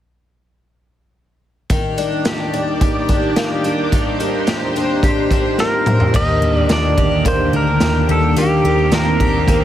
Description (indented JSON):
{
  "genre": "dream pop",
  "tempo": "108 BPM",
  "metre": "4/4",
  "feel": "straight",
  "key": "unclear",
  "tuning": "A4 = 440 Hz",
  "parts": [
    { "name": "string machine, full ensemble", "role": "sustained chords", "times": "1.9-9.6 s", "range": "D#2 to D5", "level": "-21 LUFS", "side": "equal", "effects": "ensemble chorus" },
    { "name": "picked twelve-string acoustic guitar", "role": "arpeggios", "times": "1.7-9.6 s", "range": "D#3 to G4", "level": "-20 LUFS", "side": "left 1 dB", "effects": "wide subtle chorus, tape echo" },
    { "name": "raw garage drum kit", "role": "drums", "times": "1.7-9.6 s", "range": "crash cymbal, hi-hat, kick drum, snare drum, toms", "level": "-19 LUFS", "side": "equal", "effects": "none" },
    { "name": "pedal steel guitar", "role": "melody", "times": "5.6-9.6 s", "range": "G4 to D#5", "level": "-18 LUFS", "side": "right 1 dB", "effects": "tape echo" },
    { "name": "vintage muted picked electric bass", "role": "bass", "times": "6.1-9.6 s", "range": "D2 to D#2", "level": "-18 LUFS", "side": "equal", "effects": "none" }
  ],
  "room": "light reverb, studio reverb",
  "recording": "heavily compressed radio sound, multiband compression",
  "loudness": "-14 LUFS",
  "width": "side -11 dB against mid",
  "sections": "1.7-6.1 A section; 6.1-9.6 B section",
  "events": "drum fill 5.6-6.1",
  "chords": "1.7 D#maj7"
}